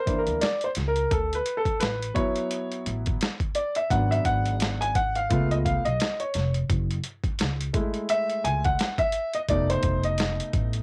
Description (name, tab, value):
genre	hip hop, jazz-hop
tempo	86 BPM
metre	4/4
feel	swing 58% on 16ths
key	unclear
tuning	A4 = 440 Hz
part	warm upright piano	accompaniment	0.0-10.8 s	B2 to G#5	-28 LUFS	equal	cassette tape
part	boom bap sampler-style drum kit	drums	0.1-10.8 s	hi-hat, kick drum, snare drum	-31 LUFS	equal	overdrive, cassette tape
part	upright bass	bass	0.3-10.8 s	E#1 to D2	-30 LUFS	equal	tube saturation
room	light reverb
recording	home recording on cassette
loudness	-26 LUFS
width	mono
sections	0.0-10.8 A section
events	upright piano solo 0.0-10.8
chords	0.0 C9; 1.1 D69; 3.9 G#m7b5; 5.3 C#7b13; 6.7 F#m9; 9.5 F7#11